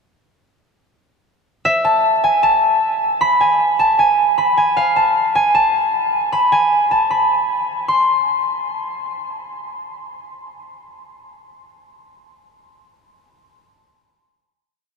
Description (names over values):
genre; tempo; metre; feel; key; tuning
hip hop; 154 BPM; 4/4; half-time; A harmonic minor; A4 = 440 Hz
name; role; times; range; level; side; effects
concert harp; solo; 1.7-9.2 s; E5 to C6; -14 LUFS; equal; ping-pong delay
room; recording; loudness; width
wet huge ambient reverb, RT60 8.8 s; dreamy mix soaked in reverb; -14 LUFS; side -5 dB against mid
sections
1.6-7.9 hook; 7.9-11.0 final note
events
none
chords
none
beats
| 1.65 2.04 2.43 2.82 | 3.21 3.60 3.99 4.38 | 4.77 5.16 5.55 5.94 | 6.33 6.71 7.11 7.49 | 7.88 8.27 8.66 9.05